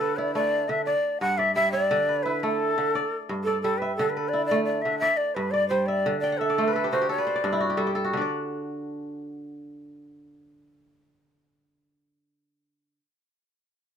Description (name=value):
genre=west african traditional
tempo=116 BPM (dotted quarters)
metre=12/8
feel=straight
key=D mixolydian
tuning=A4 = 440 Hz
part: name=breathy shakuhachi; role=melody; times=0.0-7.7 s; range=A4 to F#5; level=-24 LUFS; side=equal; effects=none
part: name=kora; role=arpeggios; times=0.0-13.1 s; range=G2 to G5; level=-28 LUFS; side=equal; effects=none
room=light reverb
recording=minimal, uncompressed stereo recording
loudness=-23 LUFS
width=side -8 dB against mid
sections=0.0-8.1 A section; 8.1-12.3 B section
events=kora fill 6.2-8.1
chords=0.0 D5; 0.9 G5; 1.9 D5; 2.9 G5; 4.0 D5; 5.0 G5; 6.1 D5; 7.1 N.C.